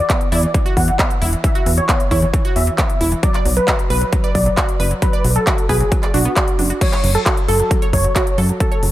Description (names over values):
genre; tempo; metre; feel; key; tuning
uplifting trance; 134 BPM; 4/4; straight; unclear; A4 = 440 Hz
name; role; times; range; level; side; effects
supersaw stab; melody; 0.0-8.9 s; F#4 to F#5; -21 LUFS; equal; sidechain pumping, low-pass filter, dub echo
analog pluck; arpeggios; 0.0-8.9 s; E3 to D5; -24 LUFS; right 2 dB; chorus, sidechain pumping, dub echo
big-room dance drum kit; drums; 0.1-8.9 s; crash cymbal, handclaps, hi-hat; -22 LUFS; equal; overdrive
electronic kick drum; drums; 0.1-8.7 s; none; -18 LUFS; equal; overdrive
plucky analog bass; bass; 0.3-8.9 s; E1 to F#2; -17 LUFS; equal; sidechain pumping
room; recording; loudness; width
digital ambience; none; -14 LUFS; side -14 dB against mid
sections
0.0-8.9 A section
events
none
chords
0.0 Esus2; 3.2 Bm; 6.8 F#m